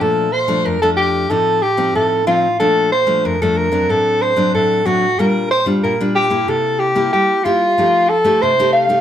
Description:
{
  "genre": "samba",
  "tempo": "93 BPM",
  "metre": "4/4",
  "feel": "straight",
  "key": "Bb major",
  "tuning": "A4 = 440 Hz",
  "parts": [
    { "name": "warm soprano saxophone", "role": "melody", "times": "0.0-9.0 s", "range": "F4 to F5", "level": "-14 LUFS", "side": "equal", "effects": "slapback echo" },
    { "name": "nylon-string guitar", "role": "accompaniment", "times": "0.0-9.0 s", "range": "F2 to G4", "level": "-19 LUFS", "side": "left 2 dB", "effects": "none" }
  ],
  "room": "moderate studio reverb, RT60 0.7 s",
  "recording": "none",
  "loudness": "-13 LUFS",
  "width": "side -10 dB against mid",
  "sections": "0.0-9.0 A section",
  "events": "none",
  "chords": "0.0 Bbmaj7; 1.3 F7/A; 2.6 Bbmaj7; 3.9 D7/A; 5.2 Gm7/Bb; 6.5 C7; 7.8 F9"
}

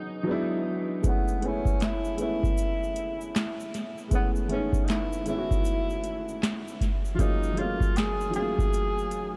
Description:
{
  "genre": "lo-fi hip hop",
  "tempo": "78 BPM",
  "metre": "4/4",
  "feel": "swing 63% on 16ths",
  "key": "unclear",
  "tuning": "A4 = 440 Hz",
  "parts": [
    { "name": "breathy tenor saxophone", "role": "melody", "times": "0.0-9.4 s", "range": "B3 to G#4", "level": "-35 LUFS", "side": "equal", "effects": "low-pass filter, diffuse ambient delay" },
    { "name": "dark upright piano", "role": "accompaniment", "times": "0.0-9.4 s", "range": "F#3 to F#4", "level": "-33 LUFS", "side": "equal", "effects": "low-pass filter" },
    { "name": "booming analog drum machine", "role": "drums", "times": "1.0-9.3 s", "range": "handclaps, hi-hat, kick drum, snare drum", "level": "-30 LUFS", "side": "equal", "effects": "overdrive" },
    { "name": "tube shaker", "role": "percussion", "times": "1.0-9.3 s", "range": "none", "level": "-53 LUFS", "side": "equal", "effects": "none" }
  ],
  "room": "moderate huge ambient reverb, RT60 7.5 s",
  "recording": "dreamy mix soaked in reverb, cassette tape",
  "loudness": "-28 LUFS",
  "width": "mono",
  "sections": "0.0-9.4 A section",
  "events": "none",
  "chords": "0.3 E7; 1.0 Amaj7; 7.2 F#maj9"
}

